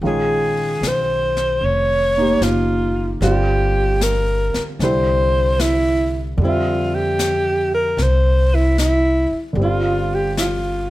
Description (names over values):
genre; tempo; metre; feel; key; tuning
jazz ballad; 75 BPM; 4/4; swing 69% on 8ths; unclear; A4 = 440 Hz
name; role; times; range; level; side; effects
warm grand piano; accompaniment; 0.0-10.9 s; D3 to E5; -23 LUFS; right 1 dB; none
upright bass; bass; 0.0-10.9 s; F1 to F2; -20 LUFS; equal; none
jazz brush drum kit; drums; 0.0-10.9 s; brushed snare drum, hi-hat, snare drum; -29 LUFS; left 3 dB; none
breathy alto saxophone; melody; 0.1-10.9 s; E4 to Db5; -18 LUFS; equal; plate reverb
room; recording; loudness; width
light reverb; none; -15 LUFS; side -16 dB against mid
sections
0.0-10.9 A section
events
none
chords
0.0 Bbm11; 3.2 G5; 4.8 C; 6.4 Fsus2; 9.6 G5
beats
| 0.01 0.82 1.62 2.42 | 3.22 4.02 4.81 5.61 | 6.40 7.19 7.99 8.78 | 9.57 10.37